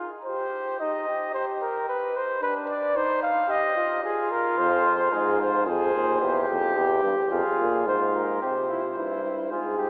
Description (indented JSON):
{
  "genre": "classical, imitative canzona for brass ensemble",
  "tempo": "110 BPM",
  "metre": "4/4",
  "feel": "straight",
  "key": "unclear",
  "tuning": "A4 = 440 Hz",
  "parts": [
    { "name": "mellow flugelhorn", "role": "second line", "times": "0.0-9.9 s", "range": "D4 to Ab4", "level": "-30 LUFS", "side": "equal", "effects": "none" },
    { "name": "dark trumpet", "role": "melody", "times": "0.2-9.9 s", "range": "G4 to F5", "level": "-29 LUFS", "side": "equal", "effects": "none" },
    { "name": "warm euphonium", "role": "bass", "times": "4.6-9.9 s", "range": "Eb2 to C3", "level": "-30 LUFS", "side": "equal", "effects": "none" }
  ],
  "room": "wet cathedral reverb, RT60 4.9 s",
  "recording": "heard from further back in the room, AM radio sound",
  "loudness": "-25 LUFS",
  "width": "mono",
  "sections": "0.0-8.4 A section; 8.4-9.9 B section",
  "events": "none",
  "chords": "0.0 Cm; 1.9 G; 3.0 Cm/Eb; 4.0 Fm; 5.1 Fm/Ab; 6.2 C/E; 7.3 Fm; 8.4 C",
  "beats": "0.25 0.80 1.33 | 1.88 2.42 2.96 3.50 | 4.04 4.58 5.12 5.67 | 6.21 6.76 7.31 7.87 | 8.42 8.97 9.51"
}